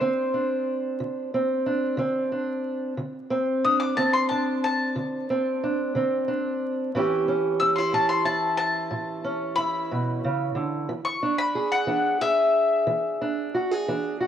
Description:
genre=acoustic country blues, solo or duo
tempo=60 BPM (dotted quarters)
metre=12/8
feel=straight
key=unclear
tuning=A4 = 440 Hz
part: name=bowl-back mandolin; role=melody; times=0.0-13.5 s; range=C5 to E6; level=-24 LUFS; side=left 3 dB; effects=cassette tape
part: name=fingerpicked steel-string acoustic guitar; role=accompaniment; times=0.0-14.3 s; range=A2 to G#4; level=-25 LUFS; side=right 2 dB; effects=cassette tape
room=moderate lush hall reverb, RT60 2.6 s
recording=home recording on cassette, vinyl crackle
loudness=-22 LUFS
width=side -9 dB against mid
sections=0.0-14.3 A section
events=mandolin solo 0.0-14.3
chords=0.0 D5; 6.9 A7; 10.9 E7

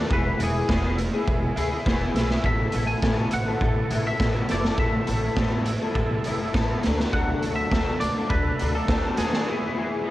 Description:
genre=indie rock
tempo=103 BPM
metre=4/4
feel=straight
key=unclear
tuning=A4 = 441 Hz
part: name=twangy electric guitar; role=melody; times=0.0-10.1 s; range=G#4 to G#5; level=-31 LUFS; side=equal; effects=analog chorus
part: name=crunchy overdriven guitar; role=riff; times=0.0-10.1 s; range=D3 to A4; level=-33 LUFS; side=right 6 dB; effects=analog chorus, cassette tape, analog delay
part: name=electric guitar through a small old amp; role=riff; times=0.0-10.1 s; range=D3 to A4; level=-28 LUFS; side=left 5 dB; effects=ensemble chorus, cassette tape
part: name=upright bass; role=bass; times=0.1-9.4 s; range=E1 to D#2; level=-28 LUFS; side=equal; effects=none
part: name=raw garage drum kit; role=drums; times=0.1-9.5 s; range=hi-hat, kick drum, snare drum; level=-25 LUFS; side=right 1 dB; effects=cassette tape
room=light reverb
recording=home recording on cassette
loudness=-21 LUFS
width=side -15 dB against mid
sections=0.0-10.1 A section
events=break 9.5-10.1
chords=0.1 E; 2.5 Asus2; 6.8 D; 9.5 E

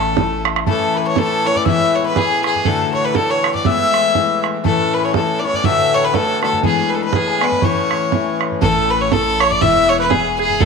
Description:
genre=celtic folk, Celtic polka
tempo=121 BPM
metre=2/4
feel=swing 57% on 8ths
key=A major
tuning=A4 = 441 Hz
part: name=bright fiddle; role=melody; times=0.0-10.7 s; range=G#4 to E5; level=-18 LUFS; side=right 1 dB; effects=slapback echo
part: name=breathy mid whistle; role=second line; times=0.0-10.7 s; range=F#5 to E6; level=-22 LUFS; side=left 7 dB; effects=none
part: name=mandolin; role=second line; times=0.0-0.4, 8.6-10.7 s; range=G#4 to E5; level=-22 LUFS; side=right 12 dB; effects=none
part: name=picked steel-string acoustic guitar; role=accompaniment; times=0.0-10.7 s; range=D2 to F#4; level=-21 LUFS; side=left 13 dB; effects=none
part: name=tight sequencer bass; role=bass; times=0.0-0.7, 8.6-10.7 s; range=E1 to D2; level=-26 LUFS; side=right 1 dB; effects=none
part: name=bodhran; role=percussion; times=0.2-10.7 s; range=none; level=-20 LUFS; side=right 8 dB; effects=none
part: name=accordion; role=drone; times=0.7-8.7 s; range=A2 to E3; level=-25 LUFS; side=equal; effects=stereo widening
room=moderate echo chamber reverb, RT60 2.0 s, small room ambience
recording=1960s-style stereo with parts hard left and right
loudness=-14 LUFS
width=side -5 dB against mid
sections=0.7-8.6 A section; 8.6-10.7 A section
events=none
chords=0.0 A; 1.7 E; 2.7 D; 3.7 E; 4.6 A; 5.6 D; 6.6 E7; 7.6 A; 9.6 E

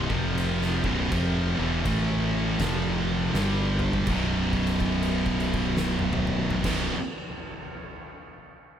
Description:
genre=stoner and doom metal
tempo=81 BPM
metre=4/4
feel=swing 62% on 8ths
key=unclear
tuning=A4 = 440 Hz
part: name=heavy high-gain guitar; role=riff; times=0.0-7.0 s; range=B1 to A3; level=-30 LUFS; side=equal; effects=distortion
part: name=thick fuzz guitar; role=riff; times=0.0-6.9 s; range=B1 to A3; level=-30 LUFS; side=left 6 dB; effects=distortion
part: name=thick fuzz guitar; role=riff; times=0.0-6.9 s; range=B1 to A3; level=-29 LUFS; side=right 8 dB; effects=distortion
part: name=fuzz fingered electric bass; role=bass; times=0.0-6.9 s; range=B0 to A1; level=-30 LUFS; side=equal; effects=overdrive
part: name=oversized low-tuned drum kit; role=drums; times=0.1-6.8 s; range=crash cymbal, kick drum, snare drum, toms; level=-31 LUFS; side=equal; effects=none
room=small room reverb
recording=none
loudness=-23 LUFS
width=side -9 dB against mid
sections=0.0-4.1 A section; 4.1-7.0 B section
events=drum fill 3.3-4.1; held note 4.1-6.6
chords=0.0 F5; 0.7 B5; 1.9 A5; 2.6 F5; 3.3 G5; 4.1 B5

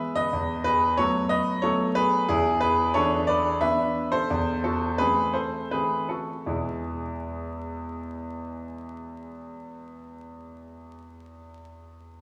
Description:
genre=classical-period piano sonatina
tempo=78-93 BPM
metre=3/4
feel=straight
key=E major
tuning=A4 = 441 Hz
part: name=warm grand piano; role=solo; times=0.0-12.2 s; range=E2 to E5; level=-27 LUFS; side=equal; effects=none
room=wet recital hall reverb, RT60 1.7 s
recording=heard from further back in the room, vinyl crackle, small room ambience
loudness=-25 LUFS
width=mono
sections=0.0-6.5 A section; 6.5-10.9 B section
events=slowing down 1.3-6.5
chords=0.3 B5/E; 2.3 E7; 4.3 Am/E; 6.5 E

